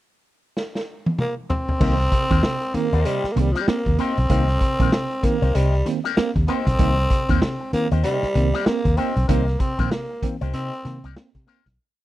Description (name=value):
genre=funk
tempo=96 BPM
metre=4/4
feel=swing 60% on 16ths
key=C minor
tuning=A4 = 444 Hz
part: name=raw garage drum kit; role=drums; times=0.6-11.8 s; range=crash cymbal, hi-hat, kick drum, snare drum, toms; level=-23 LUFS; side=equal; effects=none
part: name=growling tenor saxophone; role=melody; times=1.2-11.1 s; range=F3 to C4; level=-25 LUFS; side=equal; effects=none
part: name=electric guitar with an envelope filter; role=accompaniment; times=1.8-11.7 s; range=Bb3 to D5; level=-29 LUFS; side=left 10 dB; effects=wah
part: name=tine electric piano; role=stabs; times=1.8-11.6 s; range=C3 to C4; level=-26 LUFS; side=right 3 dB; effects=medium stereo tremolo
part: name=vintage muted fingered electric bass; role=bass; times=1.8-11.8 s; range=Bb1 to C3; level=-21 LUFS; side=equal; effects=none
room=little or no reverb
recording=dry, close 1970s-style studio recording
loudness=-19 LUFS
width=side -15 dB against mid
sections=0.0-1.8 pickup bar; 1.8-11.8 A section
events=drum fill 0.6-1.8; fade-out 9.3-11.8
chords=0.0 N.C.; 1.8 Cm7